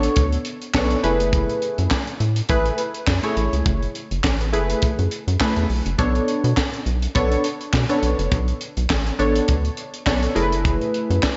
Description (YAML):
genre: early-eighties boogie funk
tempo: 103 BPM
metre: 4/4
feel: swing 56% on 16ths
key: B dorian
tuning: A4 = 440 Hz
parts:
  - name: funky polysynth comp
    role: accompaniment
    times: 0.0-11.3 s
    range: A3 to C#5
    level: -25 LUFS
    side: equal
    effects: chorus, slapback echo
  - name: rubbery square bass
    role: bass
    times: 0.0-11.2 s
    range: F#1 to B2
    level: -24 LUFS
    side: equal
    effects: none
  - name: tight funk drum kit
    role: drums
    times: 0.0-11.4 s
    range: handclaps, hi-hat, kick drum, snare drum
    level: -26 LUFS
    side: equal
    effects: none
room: moderate lush hall reverb, RT60 2.1 s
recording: big arena sound, nothing above 7.8 kHz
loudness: -21 LUFS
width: mono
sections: 0.0-11.4 A section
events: none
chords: 0.0 Bm9; 1.0 F#m11; 6.0 Bm9; 10.4 F#m11